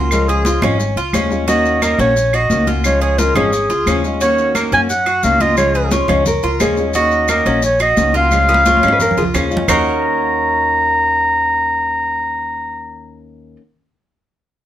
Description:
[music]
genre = latin, Cuban son and guajira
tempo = 175 BPM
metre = 4/4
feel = straight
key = Eb minor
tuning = A4 = 437 Hz
[part]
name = fingerpicked steel-string acoustic guitar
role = accompaniment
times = 0.0-13.6 s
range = Db3 to Gb4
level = -22 LUFS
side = left 3 dB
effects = none
[part]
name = Cuban tres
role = arpeggios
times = 0.0-13.6 s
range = Bb3 to Db5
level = -21 LUFS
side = right 2 dB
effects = none
[part]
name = upright bass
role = bass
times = 0.0-13.6 s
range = Ab1 to Gb2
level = -21 LUFS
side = equal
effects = none
[part]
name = mellow clarinet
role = melody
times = 0.1-13.2 s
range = Ab4 to Bb5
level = -15 LUFS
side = equal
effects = none
[part]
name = claves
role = percussion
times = 0.1-9.8 s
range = none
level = -22 LUFS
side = right 4 dB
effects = none
[part]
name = congas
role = percussion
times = 0.1-9.8 s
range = none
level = -23 LUFS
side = left 1 dB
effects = none
[part]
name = maracas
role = percussion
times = 0.1-9.8 s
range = none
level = -29 LUFS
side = left 5 dB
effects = none
[part]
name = nylon-string guitar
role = second line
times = 5.9-13.6 s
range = F4 to Db5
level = -21 LUFS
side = left 1 dB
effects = analog delay
[sound]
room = moderate studio reverb, RT60 0.7 s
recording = none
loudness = -12 LUFS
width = side -11 dB against mid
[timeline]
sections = 0.0-9.7 A section; 9.7-12.4 B section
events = drum fill 8.3-9.7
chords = 0.1 Db; 1.5 Ebm7; 2.8 Db; 4.2 Ebm7; 5.6 Db; 6.9 Ebm7; 8.3 Db; 9.7 Ebm7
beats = | 0.11 0.46 0.80 1.14 | 1.48 1.82 2.16 2.50 | 2.85 3.19 3.53 3.87 | 4.21 4.56 4.90 5.24 | 5.58 5.92 6.26 6.61 | 6.95 7.29 7.63 7.98 | 8.32 8.66 9.00 9.35 | 9.69 10.03 10.37 10.72 | 11.06 11.40 11.74 12.09

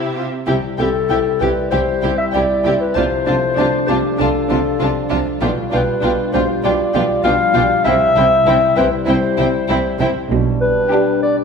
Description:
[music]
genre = cinematic, playful, whimsical film cue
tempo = 98 BPM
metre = 4/4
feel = straight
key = C major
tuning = A4 = 440 Hz
[part]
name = dark studio violin section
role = melody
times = 0.0-11.4 s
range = E5 to A5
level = -26 LUFS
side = left 4 dB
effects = none
[part]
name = warm studio violin section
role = second line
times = 0.0-11.4 s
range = E4 to G4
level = -24 LUFS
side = left 2 dB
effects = none
[part]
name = warm studio viola section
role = accompaniment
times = 0.0-11.4 s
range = C4 to F4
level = -25 LUFS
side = right 3 dB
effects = none
[part]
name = concert harp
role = arpeggios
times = 0.0-11.4 s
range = B2 to E4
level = -24 LUFS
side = left 4 dB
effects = none
[part]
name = warm symphonic cello section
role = bass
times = 0.0-10.8 s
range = B2 to C3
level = -24 LUFS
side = right 4 dB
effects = none
[part]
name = dark French horn section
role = sustained chords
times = 0.5-11.4 s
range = F3 to F4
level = -23 LUFS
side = left 2 dB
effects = none
[part]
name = rich studio double bass section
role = bass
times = 0.5-10.8 s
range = B1 to C2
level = -25 LUFS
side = right 4 dB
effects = none
[part]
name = mellow clarinet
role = second line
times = 0.8-11.4 s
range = G4 to F5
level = -17 LUFS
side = left 2 dB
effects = none
[sound]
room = wet scoring stage reverb, RT60 1.7 s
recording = minimal, uncompressed stereo recording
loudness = -14 LUFS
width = side -6 dB against mid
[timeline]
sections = 0.5-11.4 A section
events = none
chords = 0.5 C; 3.0 Dm7/C; 5.4 G7/B; 7.9 C; 10.3 G/B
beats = | 0.48 1.10 1.71 2.33 | 2.96 3.57 4.19 4.80 | 5.42 6.03 6.64 7.25 | 7.86 8.47 9.08 9.69 | 10.30 10.92

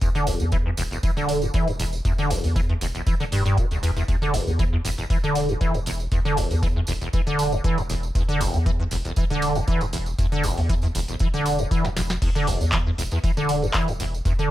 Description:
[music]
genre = acid house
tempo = 118 BPM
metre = 4/4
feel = straight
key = unclear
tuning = A4 = 440 Hz
[part]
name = acid bass, square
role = riff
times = 0.0-14.5 s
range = E1 to E3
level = -24 LUFS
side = equal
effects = tube saturation, ensemble chorus, sidechain pumping, analog delay
[part]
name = round analog bass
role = bass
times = 0.0-14.5 s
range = E1 to E2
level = -28 LUFS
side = equal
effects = sidechain pumping
[part]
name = booming analog drum machine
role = drums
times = 0.0-14.5 s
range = crash cymbal, handclaps, hi-hat, snare drum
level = -32 LUFS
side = equal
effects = none
[part]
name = electronic kick drum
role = drums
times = 0.0-14.4 s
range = none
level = -24 LUFS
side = equal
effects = none
[part]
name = tambourine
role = percussion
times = 0.0-14.5 s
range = none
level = -37 LUFS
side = right 4 dB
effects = none
[sound]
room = light reverb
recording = none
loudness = -20 LUFS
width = side -14 dB against mid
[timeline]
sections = 0.0-14.5 A section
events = drum fill 11.8-12.2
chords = 0.0 E5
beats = | 0.02 0.53 1.03 1.54 | 2.05 2.56 3.07 3.58 | 4.08 4.59 5.10 5.61 | 6.12 6.63 7.13 7.64 | 8.15 8.66 9.17 9.68 | 10.19 10.70 11.20 11.71 | 12.22 12.73 13.24 13.74 | 14.25

